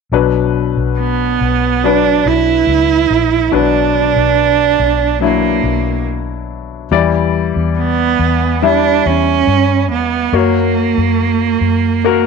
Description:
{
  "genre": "pop ballad",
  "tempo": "71 BPM",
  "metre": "4/4",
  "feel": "straight",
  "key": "B harmonic minor",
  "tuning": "A4 = 438 Hz",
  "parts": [
    { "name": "warm concert grand piano", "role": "accompaniment", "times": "0.1-12.3 s", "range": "B2 to E5", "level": "-17 LUFS", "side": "left 13 dB", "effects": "none" },
    { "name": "vintage muted fingered electric bass", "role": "bass", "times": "0.1-12.3 s", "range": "A#1 to G2", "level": "-18 LUFS", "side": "left 2 dB", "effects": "none" },
    { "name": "dark cello", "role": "melody", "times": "1.0-12.3 s", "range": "A#3 to E4", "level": "-13 LUFS", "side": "right 11 dB", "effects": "slapback echo" }
  ],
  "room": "light reverb, studio reverb",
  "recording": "1960s-style stereo with parts hard left and right",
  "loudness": "-11 LUFS",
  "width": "side -5 dB against mid",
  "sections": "0.1-12.3 A section",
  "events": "none",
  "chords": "0.1 Bm; 6.9 Em7; 10.3 F#"
}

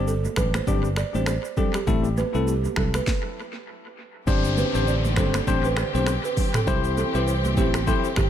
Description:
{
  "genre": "afrobeats",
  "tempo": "100 BPM",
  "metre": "4/4",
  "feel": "swing 58% on 16ths",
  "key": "G major",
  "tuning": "A4 = 442 Hz",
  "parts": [
    { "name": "bell-like tine electric piano", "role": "accompaniment", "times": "0.0-8.1 s", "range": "G3 to C5", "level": "-28 LUFS", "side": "left 5 dB", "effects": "dub echo" },
    { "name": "fingered electric bass", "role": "bass", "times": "0.0-8.3 s", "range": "G1 to C2", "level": "-25 LUFS", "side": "equal", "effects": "none" },
    { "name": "balafon", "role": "riff", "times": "0.1-8.3 s", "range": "G4 to D5", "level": "-30 LUFS", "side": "right 8 dB", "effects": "dub echo" },
    { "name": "afro-pop drum kit", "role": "drums", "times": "0.1-8.3 s", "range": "finger snaps, hi-hat, kick drum, rim click, shaker, snare drum, toms", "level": "-27 LUFS", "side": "equal", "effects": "dub echo" },
    { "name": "congas", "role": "percussion", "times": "0.3-8.0 s", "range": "none", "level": "-33 LUFS", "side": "right 5 dB", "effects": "dub echo" },
    { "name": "warm studio string section", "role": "sustained chords", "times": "4.3-8.3 s", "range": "D3 to G4", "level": "-31 LUFS", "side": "left 2 dB", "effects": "none" },
    { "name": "downlifter", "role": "sound effects", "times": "4.3-8.3 s", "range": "none", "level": "-34 LUFS", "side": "left 1 dB", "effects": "none" }
  ],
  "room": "digital ambience",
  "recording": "echo-heavy mix",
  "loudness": "-21 LUFS",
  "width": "side -10 dB against mid",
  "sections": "0.0-4.3 A section; 4.3-8.3 B section",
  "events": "stop 3.1-4.3",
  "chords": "0.0 Gsus4; 1.9 Am; 4.3 Gsus4; 6.7 C"
}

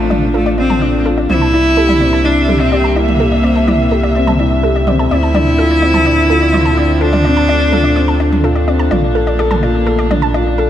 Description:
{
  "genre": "piano and strings electronica",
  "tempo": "126 BPM",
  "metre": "4/4",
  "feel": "straight",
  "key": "D minor",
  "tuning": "A4 = 440 Hz",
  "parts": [
    { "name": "clear cello", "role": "melody", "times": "0.0-8.7 s", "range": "A3 to E4", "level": "-15 LUFS", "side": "equal", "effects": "none" },
    { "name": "dark chamber string section", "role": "sustained chords", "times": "0.0-10.7 s", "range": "C3 to E5", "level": "-20 LUFS", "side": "left 1 dB", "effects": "stereo widening" },
    { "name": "analog pluck", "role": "arpeggios", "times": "0.0-10.7 s", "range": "A4 to A5", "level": "-22 LUFS", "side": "equal", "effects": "chorus, digital delay" },
    { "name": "dark baby grand piano", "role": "riff", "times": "0.0-10.7 s", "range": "C4 to A4", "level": "-17 LUFS", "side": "left 2 dB", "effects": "digital delay" },
    { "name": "warm sub bass", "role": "bass", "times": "0.0-10.7 s", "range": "A1 to D2", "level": "-16 LUFS", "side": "right 1 dB", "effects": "none" },
    { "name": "electronic toms", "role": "drums", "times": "0.1-10.2 s", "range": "none", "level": "-22 LUFS", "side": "right 2 dB", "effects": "overdrive" }
  ],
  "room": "moderate recital hall reverb, RT60 1.6 s, small room ambience",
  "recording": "none",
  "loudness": "-10 LUFS",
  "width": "side -11 dB against mid",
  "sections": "0.0-10.7 A section",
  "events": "filter sweep on synth arpeggio sound 0.0-10.7",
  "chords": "0.0 F6/A; 1.3 C7; 5.1 Dm7; 8.9 Bbmaj7"
}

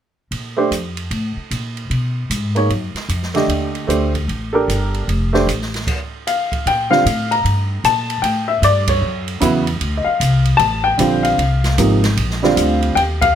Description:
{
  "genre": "jazz piano trio",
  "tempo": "152 BPM",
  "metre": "4/4",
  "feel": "swing 64% on 8ths",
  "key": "Bb major",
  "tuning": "A4 = 440 Hz",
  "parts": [
    { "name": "upright bass", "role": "bass", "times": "0.3-13.3 s", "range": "F1 to B2", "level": "-19 LUFS", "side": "equal", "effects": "none" },
    { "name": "open jazz drum kit", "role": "drums", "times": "0.3-13.3 s", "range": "crash cymbal, hi-hat, kick drum, ride cymbal, snare drum", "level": "-25 LUFS", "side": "right 3 dB", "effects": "none" },
    { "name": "warm upright piano", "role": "melody", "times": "0.6-13.3 s", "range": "C3 to Bb5", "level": "-16 LUFS", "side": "equal", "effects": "none" }
  ],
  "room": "light reverb",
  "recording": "close, detailed microphones",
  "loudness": "-15 LUFS",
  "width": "side -9 dB against mid",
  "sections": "0.3-6.7 A section; 6.7-13.3 B section",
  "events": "stop 5.9-6.7; band accent 8.8, 13.2",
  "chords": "0.3 Bbmaj7(no3); 1.9 B5; 3.5 Ebmaj7; 5.1 F; 6.7 Bb5; 8.2 A7; 9.8 Dm7; 11.4 Fm7; 12.2 Bb"
}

